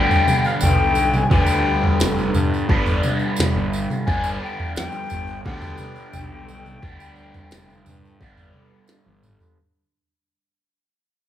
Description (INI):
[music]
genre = psychedelic rock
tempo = 87 BPM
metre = 4/4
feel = straight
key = G major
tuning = A4 = 440 Hz
[part]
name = bright reedy jazz flute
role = melody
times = 0.0-8.9 s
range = F5 to Ab5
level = -24 LUFS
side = left 5 dB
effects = none
[part]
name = string machine, cellos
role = sustained chords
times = 0.1-9.6 s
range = G3 to B5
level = -35 LUFS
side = right 4 dB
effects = none
[part]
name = overdriven semi-hollow guitar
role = riff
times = 0.0-9.6 s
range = G2 to D4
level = -24 LUFS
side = right 1 dB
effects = phaser
[part]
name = fuzz fingered electric bass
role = bass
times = 0.0-9.4 s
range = F1 to G2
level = -26 LUFS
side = equal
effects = overdrive
[part]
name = minimal click drum kit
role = drums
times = 0.1-9.6 s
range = kick drum, snare drum, toms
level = -21 LUFS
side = equal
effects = none
[part]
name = tambourine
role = percussion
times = 0.1-9.5 s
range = none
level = -37 LUFS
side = right 4 dB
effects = none
[sound]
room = moderate large studio reverb, RT60 1.1 s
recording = band playing live in one room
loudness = -17 LUFS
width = side -11 dB against mid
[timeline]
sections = 0.0-9.6 A section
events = fade-out 0.0-9.6; drum fill 8.9-9.6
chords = 0.0 G